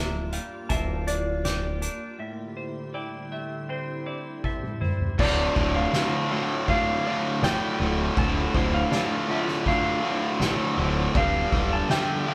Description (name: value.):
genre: post-rock.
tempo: 80 BPM.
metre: 4/4.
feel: straight.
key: D minor.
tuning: A4 = 436 Hz.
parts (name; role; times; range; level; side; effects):
clean lap steel guitar; melody; 0.0-12.3 s; C5 to Bb5; -33 LUFS; equal; tape echo.
soft additive organ-like pad; sustained chords; 0.0-12.3 s; D3 to D5; -40 LUFS; equal; none.
semi-hollow electric guitar; arpeggios; 0.0-12.3 s; F4 to F5; -40 LUFS; equal; none.
twangy electric guitar; arpeggios; 0.0-5.2 s; G2 to A4; -40 LUFS; equal; none.
growling picked electric bass; bass; 0.0-11.8 s; D1 to A1; -31 LUFS; equal; overdrive.
soft-mallet drum kit; drums; 0.3-12.1 s; crash cymbal, hi-hat, kick drum, snare drum, toms; -31 LUFS; equal; none.
cranked stack guitar; riff; 5.2-12.3 s; D2 to G3; -30 LUFS; equal; overdrive.
distorted electric guitar; riff; 5.2-12.3 s; D2 to G3; -31 LUFS; equal; overdrive.
room: wet studio reverb, RT60 0.7 s.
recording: band playing live in one room.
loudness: -26 LUFS.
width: mono.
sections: 0.0-5.2 A section; 5.2-12.3 B section.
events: break 2.2-5.2; drum fill 4.4-5.2.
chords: 0.0 Gm7/D; 2.2 Am7; 5.2 Dm; 11.2 Gm7/D.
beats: 0.70 1.45 | 2.20 2.95 3.70 4.44 | 5.19 5.94 6.68 7.43 | 8.17 8.92 9.66 10.41 | 11.15 11.90.